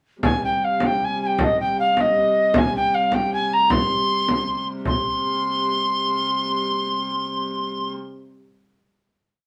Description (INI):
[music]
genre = medieval dance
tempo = 104 BPM (dotted quarters)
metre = 6/8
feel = straight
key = C minor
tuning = A4 = 444 Hz
[part]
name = reedy soprano recorder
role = melody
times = 0.2-7.9 s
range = Eb5 to C6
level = -22 LUFS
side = equal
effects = none
[part]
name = dark hurdy-gurdy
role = drone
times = 0.2-8.0 s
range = C3 to G3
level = -31 LUFS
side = equal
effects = none
[part]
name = frame drum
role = percussion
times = 0.2-5.0 s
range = none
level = -25 LUFS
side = equal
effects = none
[sound]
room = wet studio reverb, RT60 0.6 s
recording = band playing live in one room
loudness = -21 LUFS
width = mono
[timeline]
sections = 0.2-4.9 A section; 4.9-7.2 final chord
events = none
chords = none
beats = | 0.23 0.81 | 1.40 1.98 | 2.56 3.14 | 3.72 4.29 | 4.87 5.45 | 6.02 6.59